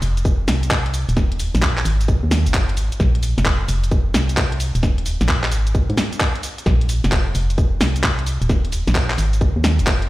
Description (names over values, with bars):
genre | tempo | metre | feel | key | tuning
UK garage, two-step garage | 131 BPM | 4/4 | swing 66% on 16ths | unclear | A4 = 440 Hz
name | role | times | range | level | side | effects
organ-like FM bass | bass | 0.0-10.1 s | Eb1 to Ab2 | -19 LUFS | equal | sidechain pumping
garage drum kit | drums | 0.0-10.1 s | cabasa, handclaps, hi-hat, snare drum | -22 LUFS | equal | none
electronic kick drum | drums | 0.2-10.0 s | none | -19 LUFS | equal | none
room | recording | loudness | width
digital ambience | played on a big sound system in a bare room, large studio reverb | -16 LUFS | side -17 dB against mid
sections
0.0-10.1 A section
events
none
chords
none